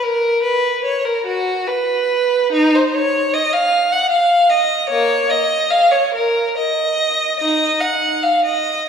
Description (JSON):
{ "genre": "classical, baroque-style suite movement for unaccompanied violin", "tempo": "73 BPM", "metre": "3/4", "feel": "uneven beats, rubato", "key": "unclear", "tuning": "A4 = 440 Hz", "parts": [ { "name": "rich violin", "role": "solo", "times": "0.0-8.9 s", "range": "Bb3 to Gb5", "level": "-14 LUFS", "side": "equal", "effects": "none" } ], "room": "wet concert hall reverb, RT60 2.1 s", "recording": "recorded in a church or concert hall", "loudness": "-14 LUFS", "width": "side -7 dB against mid", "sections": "0.0-8.9 A section", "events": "none", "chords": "none" }